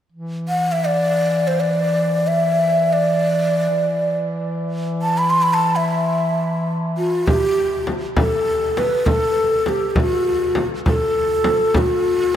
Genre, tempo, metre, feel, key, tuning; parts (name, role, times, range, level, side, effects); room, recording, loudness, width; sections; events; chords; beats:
Persian modal ensemble; free time; E dastgah shur; A4 = 442 Hz
mellow duduk; drone; 0.1-7.3 s; E3; -23 LUFS; left 1 dB; stereo widening
breathy mellow ney; melody; 0.5-12.4 s; F4+36c to C6; -18 LUFS; equal
frame drum; percussion; 7.3-11.9 s; -21 LUFS; equal
wet cathedral reverb, RT60 5.6 s; in a vast, echoing space; -16 LUFS; side -10 dB against mid
0.1-7.3 A section; 7.3-12.4 B section
free time